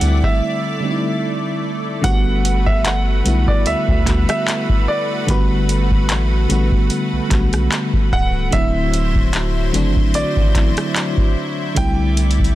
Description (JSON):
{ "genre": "contemporary R&B", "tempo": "74 BPM", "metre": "4/4", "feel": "swing 54% on 16ths", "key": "G major", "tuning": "A4 = 439 Hz", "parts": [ { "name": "warm baby grand piano", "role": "melody", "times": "0.0-12.6 s", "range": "B4 to G5", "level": "-24 LUFS", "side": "right 2 dB", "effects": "tape echo" }, { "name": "FM electric piano with auto-pan", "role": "accompaniment", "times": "0.0-12.6 s", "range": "D3 to F#4", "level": "-21 LUFS", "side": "equal", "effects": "none" }, { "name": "lush unison pad", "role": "sustained chords", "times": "0.0-12.6 s", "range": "F#3 to D5", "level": "-26 LUFS", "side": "equal", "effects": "chorus" }, { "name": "warm sub bass", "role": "bass", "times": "0.0-12.6 s", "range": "C#1 to D2", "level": "-18 LUFS", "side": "equal", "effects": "none" }, { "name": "booming analog drum machine", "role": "drums", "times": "0.0-12.6 s", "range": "handclaps, hi-hat, kick drum, rim click", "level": "-18 LUFS", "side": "equal", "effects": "none" } ], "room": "little or no reverb", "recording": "dense, heavily limited modern master", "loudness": "-15 LUFS", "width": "side -15 dB against mid", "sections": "0.0-12.6 A section", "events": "break 0.4-2.0", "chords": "0.0 C69; 2.0 Gmaj9; 8.5 D9; 11.8 C69" }